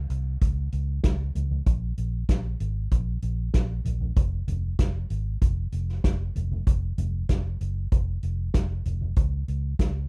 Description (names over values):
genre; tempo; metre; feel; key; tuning
piano-driven pop; 96 BPM; 4/4; straight; unclear; A4 = 440 Hz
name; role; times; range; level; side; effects
vintage muted fingered electric bass; bass; 0.0-10.0 s; F1 to Db2; -30 LUFS; equal; none
soft-mallet drum kit; drums; 0.1-9.9 s; hi-hat, kick drum, snare drum, toms; -27 LUFS; equal; none
room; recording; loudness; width
little or no reverb; none; -27 LUFS; mono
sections
0.0-10.1 A section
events
none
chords
none